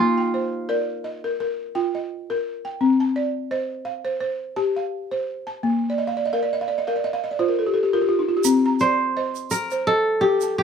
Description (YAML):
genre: west african traditional, West African string and xylophone music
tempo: 85 BPM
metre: 4/4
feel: swing 55% on 16ths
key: C dorian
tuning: A4 = 440 Hz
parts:
  - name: kora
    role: melody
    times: 0.0-2.1, 8.8-10.6 s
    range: Eb4 to C5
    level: -21 LUFS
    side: right 2 dB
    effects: none
  - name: balafon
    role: arpeggios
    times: 0.0-10.6 s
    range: Bb3 to Bb5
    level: -22 LUFS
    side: left 1 dB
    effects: none
  - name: tube shaker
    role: percussion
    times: 8.4-10.6 s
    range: none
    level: -29 LUFS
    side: right 11 dB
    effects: none
room: light reverb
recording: none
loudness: -20 LUFS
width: side -7 dB against mid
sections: 0.0-8.4 A section; 8.4-10.6 A section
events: balafon fill 5.9-8.4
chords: 0.0 Bb; 2.8 Cm; 5.6 Bb5; 8.4 Cm